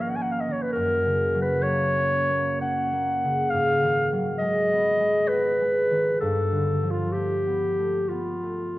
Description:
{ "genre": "classical, impressionist duo for clarinet and harp", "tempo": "58-69 BPM", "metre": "3/4", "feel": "rubato", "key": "F# major", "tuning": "A4 = 443 Hz", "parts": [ { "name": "mellow clarinet", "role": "melody", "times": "0.0-8.8 s", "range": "F4 to G#5", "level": "-24 LUFS", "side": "equal", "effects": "none" }, { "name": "concert harp", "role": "accompaniment", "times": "0.0-8.8 s", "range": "F#2 to C#4", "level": "-26 LUFS", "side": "equal", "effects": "none" } ], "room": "wet scoring stage reverb, RT60 1.7 s", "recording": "worn, warbling old tape, cassette tape, warbly pitch drift", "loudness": "-21 LUFS", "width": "side -16 dB against mid", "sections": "0.0-8.8 A section", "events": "none", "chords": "0.0 D#m11/G#; 0.7 F#; 3.5 G#m9; 6.2 G9" }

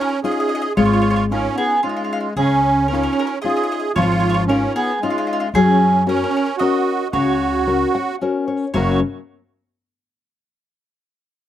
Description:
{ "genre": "italian folk, Italian serenade", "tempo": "113 BPM", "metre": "3/4", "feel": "straight", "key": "F# major", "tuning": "A4 = 440 Hz", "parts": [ { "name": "mandolin", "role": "melody", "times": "0.0-9.0 s", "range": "E#4 to D#5", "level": "-22 LUFS", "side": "right 1 dB", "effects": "slapback echo" }, { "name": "musette accordion", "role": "second line", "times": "0.0-9.0 s", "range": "G#3 to G#4", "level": "-21 LUFS", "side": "right 5 dB", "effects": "none" }, { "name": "nylon-string guitar", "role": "accompaniment", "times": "0.0-9.0 s", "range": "F#2 to F#5", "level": "-20 LUFS", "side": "left 4 dB", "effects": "none" }, { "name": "upright bass", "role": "bass", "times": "0.8-9.0 s", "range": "F#1 to F#2", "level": "-23 LUFS", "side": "equal", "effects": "none" } ], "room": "light reverb", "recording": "recorded outdoors, with no room sound", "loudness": "-16 LUFS", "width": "side -11 dB against mid", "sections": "0.0-8.7 A section; 8.7-10.3 B section", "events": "nylon-string guitar fill 7.7-8.7", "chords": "0.0 C#add9; 5.5 F#" }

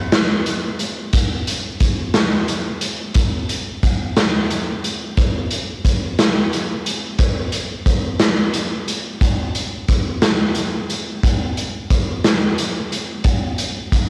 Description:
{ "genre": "rock", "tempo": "59 BPM (dotted quarters)", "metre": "6/8", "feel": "straight", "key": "none", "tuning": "none", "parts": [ { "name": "raw garage drum kit", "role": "drums", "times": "0.1-14.1 s", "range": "hi-hat, kick drum, snare drum", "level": "-19 LUFS", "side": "equal", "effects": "cassette tape" } ], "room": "light reverb", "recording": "home recording on cassette", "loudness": "-19 LUFS", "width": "mono", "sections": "0.0-14.1 A section", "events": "none", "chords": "none" }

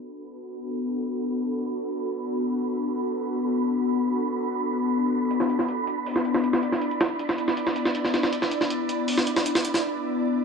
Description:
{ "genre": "drum and bass, jungle", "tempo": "159 BPM", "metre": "4/4", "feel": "straight", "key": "B minor", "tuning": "A4 = 442 Hz", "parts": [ { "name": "ethereal airy pad", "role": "sustained chords", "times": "0.0-10.4 s", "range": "B3 to D5", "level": "-25 LUFS", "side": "left 2 dB", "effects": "ensemble chorus, built-in reverb" }, { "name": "wind-like tuned noise texture", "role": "texture", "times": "1.7-9.8 s", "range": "B5", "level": "-34 LUFS", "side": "right 7 dB", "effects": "built-in reverb" }, { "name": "jungle sampler-style drum kit", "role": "drums", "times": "5.3-9.8 s", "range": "hi-hat, snare drum", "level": "-25 LUFS", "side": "right 1 dB", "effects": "overdrive, studio reverb" } ], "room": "wet echo chamber reverb, RT60 1.8 s", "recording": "vinyl crackle, low-pass filter", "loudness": "-23 LUFS", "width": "side -5 dB against mid", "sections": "0.0-10.4 A section", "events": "filter sweep 0.0-10.4; break 9.8-10.4", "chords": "0.0 Bm7" }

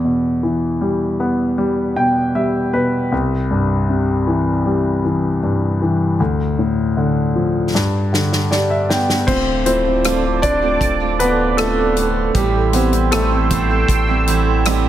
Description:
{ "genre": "pop ballad", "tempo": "78 BPM", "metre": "4/4", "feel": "straight", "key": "unclear", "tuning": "A4 = 440 Hz", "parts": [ { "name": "clear concert grand piano", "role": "accompaniment", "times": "0.0-14.9 s", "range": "C2 to G5", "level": "-16 LUFS", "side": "left 1 dB", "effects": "none" }, { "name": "natural country drum kit", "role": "drums", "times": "7.8-14.8 s", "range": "crash cymbal, hi-hat, kick drum, rim click, snare drum", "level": "-22 LUFS", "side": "equal", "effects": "none" }, { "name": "sweeping resonant pad", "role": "sustained chords", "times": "9.3-14.9 s", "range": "A4 to E6", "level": "-22 LUFS", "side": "right 3 dB", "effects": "chorus" }, { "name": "picked steel-string acoustic guitar", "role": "arpeggios", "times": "9.3-14.9 s", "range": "A2 to F4", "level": "-22 LUFS", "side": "right 10 dB", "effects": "tape echo" }, { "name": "warm sub bass", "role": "bass", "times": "9.3-14.9 s", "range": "D1 to A1", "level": "-20 LUFS", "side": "right 1 dB", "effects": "none" } ], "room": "light reverb, small room ambience", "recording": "none", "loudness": "-15 LUFS", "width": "side -12 dB against mid", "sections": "0.0-9.3 A section; 9.3-14.9 B section", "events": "grand piano fill 1.6-3.1, 8.1-9.3; drum fill 7.7-9.3; grand piano solo 9.3-14.9", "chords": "0.0 Em; 3.1 C; 6.2 Dm; 7.7 G; 9.3 Dm7; 12.3 Am7" }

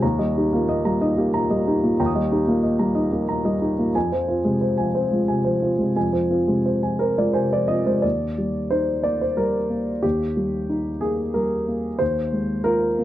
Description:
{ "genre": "neoclassical minimalist piano", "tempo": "91 BPM", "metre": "3/4", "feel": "rubato", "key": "Eb major", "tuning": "A4 = 439 Hz", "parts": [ { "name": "dark upright piano", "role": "solo", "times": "0.0-13.0 s", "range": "Eb2 to Eb6", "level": "-19 LUFS", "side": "equal", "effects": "none" } ], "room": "light reverb", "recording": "dry, close 1970s-style studio recording", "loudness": "-19 LUFS", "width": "side -13 dB against mid", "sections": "0.0-8.0 A section; 8.0-13.0 B section", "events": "none", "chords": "0.0 Eb; 3.9 Fm; 8.0 Ebmaj7; 12.0 Bb7sus4/Eb" }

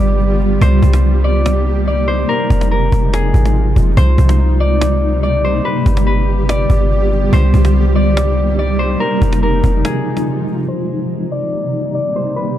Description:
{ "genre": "hip hop, atmospheric cloud-rap", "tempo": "143 BPM", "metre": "4/4", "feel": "half-time", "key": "C minor", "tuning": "A4 = 440 Hz", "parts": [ { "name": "Celtic harp", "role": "melody", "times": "0.0-12.6 s", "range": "Ab4 to D5", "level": "-20 LUFS", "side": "left 2 dB", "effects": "low-pass filter, tape echo" }, { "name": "granular cloud pad", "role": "sustained chords", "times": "0.0-12.6 s", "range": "C3 to G4", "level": "-18 LUFS", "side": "equal", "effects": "built-in reverb, low-pass filter" }, { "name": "clean 808-style bass", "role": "bass", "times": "0.0-9.8 s", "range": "F1 to C2", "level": "-13 LUFS", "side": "equal", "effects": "none" }, { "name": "cajon", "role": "drums", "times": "0.2-10.7 s", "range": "none", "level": "-21 LUFS", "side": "equal", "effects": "none" } ], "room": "little or no reverb", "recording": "dark, warm production", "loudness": "-12 LUFS", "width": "side -12 dB against mid", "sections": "0.0-10.7 A section; 10.7-12.6 B section", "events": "break 9.8-10.7", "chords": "0.0 G7; 0.6 Cm7; 2.3 Fm7; 4.0 Cm7; 5.7 G7; 7.3 Cm7; 9.0 Fm7; 10.7 Cm7" }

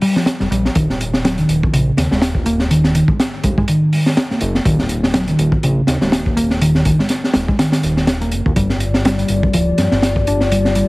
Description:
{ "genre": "breakbeat, breaks", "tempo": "123 BPM", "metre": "4/4", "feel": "swing 56% on 16ths", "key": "unclear", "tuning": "A4 = 435 Hz", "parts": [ { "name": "hollow-body short-scale picked electric bass", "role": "riff", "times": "0.0-10.9 s", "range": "Db3 to D4", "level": "-17 LUFS", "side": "equal", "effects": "low-pass filter" }, { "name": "crunchy breakbeat drum kit", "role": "drums", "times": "0.0-10.9 s", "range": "hi-hat, kick drum, snare drum", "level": "-17 LUFS", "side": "equal", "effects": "none" }, { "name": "fat analog bass", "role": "bass", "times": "0.4-10.8 s", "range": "D1 to G2", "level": "-20 LUFS", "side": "equal", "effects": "none" }, { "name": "dark analog pad", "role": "sustained chords", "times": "8.6-10.9 s", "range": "Bb3 to D5", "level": "-21 LUFS", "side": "left 3 dB", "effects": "chorus, vintage 12-bit sampler grit, sidechain pumping" } ], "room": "light reverb, small room ambience", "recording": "heavily compressed radio sound, multiband compression, vinyl crackle", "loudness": "-13 LUFS", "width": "side -22 dB against mid", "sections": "0.0-10.9 A section", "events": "filter sweep on picked electric bass 0.0-10.9", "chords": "0.0 Gm7; 0.8 Eb5; 8.6 Gm7" }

